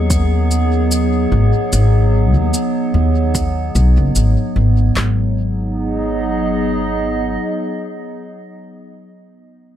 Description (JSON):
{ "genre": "ambient dub", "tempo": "74 BPM", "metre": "4/4", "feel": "swing 55% on 16ths", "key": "G# minor", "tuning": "A4 = 439 Hz", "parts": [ { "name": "warbly tape-like pad", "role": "sustained chords", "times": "0.0-9.0 s", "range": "F#3 to D#5", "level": "-19 LUFS", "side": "right 1 dB", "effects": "chorus, built-in reverb" }, { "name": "upright bass", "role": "bass", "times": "0.0-7.4 s", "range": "F#1 to D#2", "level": "-15 LUFS", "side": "equal", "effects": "none" }, { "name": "drifting glass-harmonics texture", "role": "texture", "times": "0.0-5.0 s", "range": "C#5", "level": "-34 LUFS", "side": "right 6 dB", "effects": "chorus, built-in reverb" }, { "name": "deep house drum kit", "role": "drums", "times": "0.1-5.2 s", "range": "handclaps, kick drum, snare drum", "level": "-20 LUFS", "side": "equal", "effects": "none" }, { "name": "shaker", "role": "drums", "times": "0.1-4.3 s", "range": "none", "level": "-24 LUFS", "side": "equal", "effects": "none" } ], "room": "light reverb", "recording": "none", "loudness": "-14 LUFS", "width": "side -11 dB against mid", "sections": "0.0-5.0 A section; 5.0-8.2 B section", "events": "filter sweep on upright bass 0.0-5.0", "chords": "0.0 G#m7" }